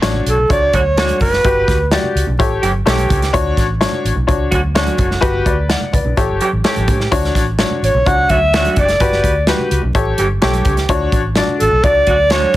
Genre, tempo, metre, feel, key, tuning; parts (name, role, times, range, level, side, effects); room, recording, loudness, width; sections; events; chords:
uptempo 1960s-style soul; 127 BPM; 4/4; straight; D major; A4 = 436 Hz
clear upright piano; accompaniment; 0.0-12.6 s; D4 to F#5; -19 LUFS; left 4 dB; plate reverb
vintage muted fingered electric bass; bass; 0.0-12.6 s; F#1 to A2; -19 LUFS; equal
natural country drum kit; drums; 0.0-12.6 s; hi-hat, kick drum, snare drum; -18 LUFS; equal
congas; percussion; 0.0-12.6 s; -27 LUFS; right 3 dB
breathy alto saxophone; melody; 0.3-1.9, 7.8-12.6 s; A4 to F#5; -14 LUFS; right 1 dB; slapback echo
clear saxophone section; second line; 0.7-12.6 s; D3 to G4; -20 LUFS; right 3 dB
light reverb; heavily compressed radio sound, multiband compression; -12 LUFS; side -15 dB against mid
0.0-12.6 A section
0.0 Dmaj7; 1.4 Gmaj7; 2.4 A7; 3.3 Dmaj7; 5.2 Gmaj7; 6.2 A7; 7.1 Dmaj7; 9.0 Gmaj7; 9.9 A7; 10.9 Dmaj7